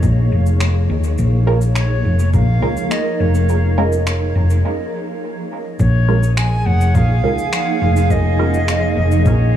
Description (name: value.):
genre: ambient dub.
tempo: 104 BPM.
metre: 4/4.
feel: straight.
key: Bb minor.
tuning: A4 = 439 Hz.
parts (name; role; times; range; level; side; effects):
granular cloud pad; sustained chords; 0.0-9.6 s; F3 to Db5; -23 LUFS; equal; built-in reverb.
hollow-body short-scale fingered electric bass; bass; 0.0-9.6 s; F1 to Eb2; -14 LUFS; equal; none.
electronic cabasa and finger snaps; drums; 0.0-9.4 s; none; -28 LUFS; equal; overdrive, dub echo.
electronic kick drum; drums; 0.0-9.4 s; none; -18 LUFS; equal; overdrive.
filtered dub chord stab; stabs; 1.5-8.6 s; Ab3 to Bb4; -25 LUFS; right 3 dB; phaser, dub echo.
bright reedy wooden flute; melody; 1.8-9.6 s; Db5 to Ab5; -24 LUFS; right 2 dB; dub echo.
drifting glass-harmonics texture; texture; 6.1-9.6 s; Ab4 to Ab5; -29 LUFS; left 2 dB; chorus, built-in reverb.
room: light reverb.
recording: small room reverb.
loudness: -13 LUFS.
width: side -10 dB against mid.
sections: 0.0-5.8 A section; 5.8-9.6 B section.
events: filter sweep on synth stab 0.0-5.8; break 4.6-5.8.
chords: 0.0 Bbm7.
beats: 0.03 0.60 | 1.18 1.76 2.33 2.91 | 3.49 4.07 4.64 5.22 | 5.80 6.37 6.95 7.53 | 8.10 8.68 9.26.